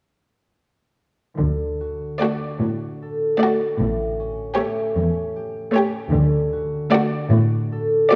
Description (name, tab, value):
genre	classical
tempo	51 BPM (dotted quarters)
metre	6/8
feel	rubato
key	D major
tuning	A4 = 444 Hz
part	concert harp	arpeggios	1.4-8.2 s	A2 to A4	-26 LUFS	equal	none
part	dark chamber double bass section	bass	1.4-6.9 s	A1 to D2	-26 LUFS	equal	none
part	dark symphonic cello section	bass	1.4-8.2 s	E2 to D3	-24 LUFS	equal	none
part	warm chamber violin section	melody	2.2-8.2 s	C#5 to D5	-28 LUFS	equal	none
part	dark chamber violin section	second line	2.2-8.2 s	F#4 to G4	-27 LUFS	equal	none
part	warm chamber viola section	accompaniment	2.2-8.2 s	A3	-25 LUFS	equal	none
room	light reverb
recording	none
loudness	-22 LUFS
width	mono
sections	1.4-8.2 A section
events	none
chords	1.4 D; 3.8 A7; 6.1 D